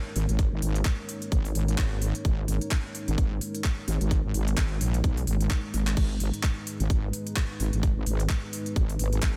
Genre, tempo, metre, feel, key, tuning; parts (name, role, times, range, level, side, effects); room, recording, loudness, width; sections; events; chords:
bass house; 129 BPM; 4/4; swing 57% on 16ths; G# minor; A4 = 440 Hz
dark analog pad; sustained chords; 0.0-9.4 s; G#3 to C#5; -38 LUFS; equal; chorus, sidechain pumping
wobble bass; bass; 0.2-9.4 s; G#1 to B1; -29 LUFS; equal; chorus, tube saturation, sidechain pumping
garage drum kit; drums; 0.2-9.3 s; crash cymbal, handclaps, hi-hat; -37 LUFS; equal
electronic kick drum; drums; 0.4-9.3 s; -28 LUFS; equal
little or no reverb; -27 LUFS; mono
0.0-9.4 A section
drum fill 5.5-6.0
0.0 G#madd9